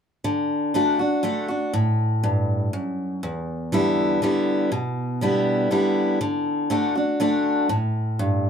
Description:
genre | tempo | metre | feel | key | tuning
bluegrass | 121 BPM | 3/4 | straight | unclear | A4 = 440 Hz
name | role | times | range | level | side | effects
picked steel-string acoustic guitar | solo | 0.2-8.5 s | E2 to F#4 | -20 LUFS | equal | none
room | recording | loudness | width
wet small room ambience, RT60 0.5 s | band playing live in one room | -20 LUFS | side -7 dB against mid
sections
0.2-8.5 A section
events
none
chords
0.2 D; 3.2 Em7; 6.2 D

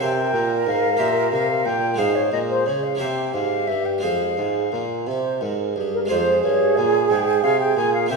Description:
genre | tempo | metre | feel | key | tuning
classical, baroque-style sonata movement with continuo | 60 BPM (dotted quarters) | 6/8 | straight | F minor | A4 = 439 Hz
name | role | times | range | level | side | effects
mellow concert flute | melody | 0.0-8.2 s | Bb4 to Ab5 | -23 LUFS | left 4 dB | none
mellow hollow concert flute | second line | 0.0-8.2 s | G4 to C5 | -23 LUFS | right 6 dB | none
harpsichord | accompaniment | 0.0-8.2 s | F2 to C5 | -28 LUFS | left 2 dB | none
mellow bassoon | bass | 0.0-8.2 s | F2 to Db3 | -24 LUFS | right 3 dB | none
room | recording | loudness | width
wet recital hall reverb, RT60 1.4 s | small room ambience | -18 LUFS | side -3 dB against mid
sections
0.0-6.1 A section; 6.1-8.2 B section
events
none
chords
0.0 C; 1.0 C5/Bb; 2.0 Fm/Ab; 3.0 C7; 4.0 Fm

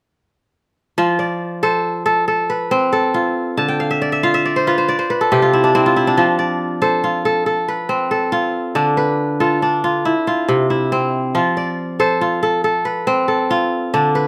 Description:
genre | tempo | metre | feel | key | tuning
west african traditional | 93 BPM (dotted quarters) | 12/8 | straight | F lydian | A4 = 438 Hz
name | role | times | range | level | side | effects
kora | arpeggios | 1.0-14.3 s | C3 to A5 | -17 LUFS | equal | none
room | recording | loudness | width
light reverb | close, detailed microphones | -17 LUFS | mono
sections
1.0-14.3 A section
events
kora fill 3.6-6.2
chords
1.0 F; 3.6 Dm; 4.9 N.C.; 6.2 F; 8.8 Dm; 10.0 C; 11.3 F

